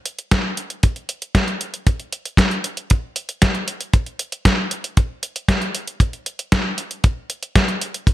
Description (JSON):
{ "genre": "italo disco", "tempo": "116 BPM", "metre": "4/4", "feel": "straight", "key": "none", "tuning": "none", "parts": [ { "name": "detuned 8-bit digital drum machine", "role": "drums", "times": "0.1-8.1 s", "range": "hi-hat, snare drum", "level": "-20 LUFS", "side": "equal", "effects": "gated reverb" }, { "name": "kick drum", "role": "drums", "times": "0.3-8.1 s", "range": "none", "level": "-15 LUFS", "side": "equal", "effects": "none" } ], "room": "little or no reverb", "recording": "none", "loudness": "-18 LUFS", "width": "side -15 dB against mid", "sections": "0.0-8.1 A section", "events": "none", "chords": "none" }